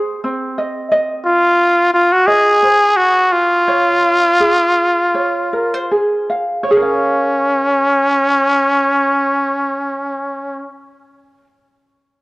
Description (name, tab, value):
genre	pop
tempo	75-88 BPM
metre	4/4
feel	swing 55% on 16ths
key	Bb minor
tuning	A4 = 438 Hz
part	ukulele	accompaniment	0.0-11.5 s	C4 to F5	-18 LUFS	right 1 dB	cassette tape
part	growling trumpet	melody	1.3-10.7 s	Db4 to Ab4	-12 LUFS	equal	cassette tape
room	wet spring reverb, RT60 2.5 s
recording	home recording on cassette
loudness	-12 LUFS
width	side -21 dB against mid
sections	0.0-6.7 A section; 6.7-9.9 B section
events	slowing down 0.9-6.7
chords	0.0 Ab/C; 0.9 Fm7; 3.7 Dbmaj7; 6.7 Bbm7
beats	0.23 | 0.90 1.58 2.27 2.97 | 3.68 4.40 5.14 5.91 | 6.70 7.50 8.30 9.10